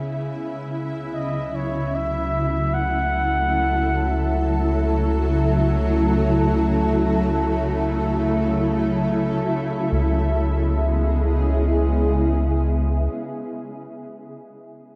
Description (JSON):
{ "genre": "ambient", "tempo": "free time", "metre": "none", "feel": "none", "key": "unclear", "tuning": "A4 = 440 Hz", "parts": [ { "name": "shimmering ambient pad", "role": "sustained chords", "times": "0.0-13.1 s", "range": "C#3 to A4", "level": "-24 LUFS", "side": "equal", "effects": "chorus, built-in reverb" }, { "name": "round analog bass", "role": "bass", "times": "0.0-13.1 s", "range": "C#2", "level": "-25 LUFS", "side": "equal", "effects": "tube saturation" }, { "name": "warm flugelhorn", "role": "melody", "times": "1.1-4.7 s", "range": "C#5 to F#5", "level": "-28 LUFS", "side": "equal", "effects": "diffuse ambient delay" } ], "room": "wet cathedral reverb, RT60 5.5 s", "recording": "none", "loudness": "-21 LUFS", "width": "mono", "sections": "0.0-9.9 A section; 9.9-12.3 B section", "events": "fade-in on ambient pad 0.0-9.9", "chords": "0.3 F#m7/C#; 9.9 C#m7" }